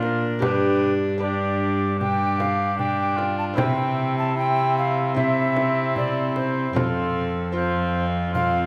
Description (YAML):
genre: classical, renaissance-style consort dance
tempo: 76 BPM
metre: 4/4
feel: straight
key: unclear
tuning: A4 = 442 Hz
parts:
  - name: alto recorder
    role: melody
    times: 0.0-8.7 s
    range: A4 to A5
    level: -28 LUFS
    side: equal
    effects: none
  - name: mellow cor anglais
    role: second line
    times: 0.0-8.7 s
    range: E4 to G4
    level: -30 LUFS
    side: equal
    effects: none
  - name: lute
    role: accompaniment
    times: 0.0-8.7 s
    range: F2 to C5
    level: -32 LUFS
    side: equal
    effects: none
  - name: rich viola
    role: accompaniment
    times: 0.0-8.7 s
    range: C4 to D4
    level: -32 LUFS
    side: equal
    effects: none
  - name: rich cello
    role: bass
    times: 0.0-8.7 s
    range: F2 to C3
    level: -28 LUFS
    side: equal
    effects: none
  - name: frame drum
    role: percussion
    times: 0.0-8.7 s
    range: none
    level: -32 LUFS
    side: equal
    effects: none
room: wet recital hall reverb, RT60 1.6 s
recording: none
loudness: -23 LUFS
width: mono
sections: 0.0-8.7 A section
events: none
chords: 0.4 G; 3.6 C; 6.8 F